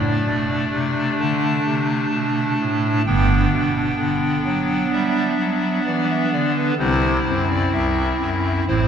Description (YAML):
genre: classical, chorale-style piece for pipe organ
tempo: 64 BPM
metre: 4/4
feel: rubato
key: unclear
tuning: A4 = 440 Hz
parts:
  - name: pipe organ, clarinet reed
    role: solo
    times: 0.0-8.9 s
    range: G1 to A5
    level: -18 LUFS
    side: equal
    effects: none
room: wet church reverb, RT60 3.2 s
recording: dark, warm production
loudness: -18 LUFS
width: side -8 dB against mid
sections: 0.0-8.9 A section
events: none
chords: 0.0 D5; 3.1 G; 6.8 C